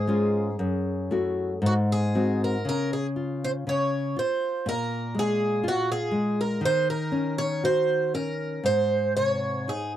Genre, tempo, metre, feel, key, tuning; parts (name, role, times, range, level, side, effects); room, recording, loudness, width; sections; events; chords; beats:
fado; 59 BPM; 2/4; rubato; Db major; A4 = 440 Hz
picked twelve-string acoustic guitar; melody; 0.0-9.9 s; F#4 to Db5; -26 LUFS; right 2 dB
nylon-string guitar; accompaniment; 0.0-10.0 s; F#2 to F#4; -26 LUFS; left 2 dB
light reverb; dry, close 1970s-style studio recording; -23 LUFS; side -11 dB against mid
0.0-2.6 A section; 2.6-10.0 B section
0.0 C#; 0.6 F#m7; 1.6 G#7; 2.6 Db; 4.7 Bb5; 6.6 Ebm7; 8.6 Ab
| 0.58 1.62 | 2.64 3.65 | 4.66 5.64 | 6.62 7.62 | 8.64 9.67